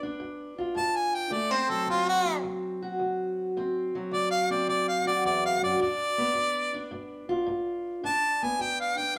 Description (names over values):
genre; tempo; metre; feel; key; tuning
acoustic country blues, solo or duo; 107 BPM; 4/4; swing 68% on 8ths; D mixolydian; A4 = 440 Hz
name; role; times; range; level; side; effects
clear harmonica; melody; 0.0-9.1 s; F4 to A5; -28 LUFS; equal; none
fingerpicked steel-string acoustic guitar; accompaniment; 0.0-9.2 s; D2 to F#4; -33 LUFS; equal; none
room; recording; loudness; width
wet stone room reverb, RT60 1.1 s; band playing live in one room; -28 LUFS; mono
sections
0.0-9.2 A section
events
harmonica solo 0.0-9.2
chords
0.0 G7; 1.3 D7; 5.8 G7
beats
0.21 0.76 | 1.32 1.88 2.44 3.00 | 3.56 4.11 4.67 5.23 | 5.79 6.35 6.91 7.47 | 8.03 8.59 9.14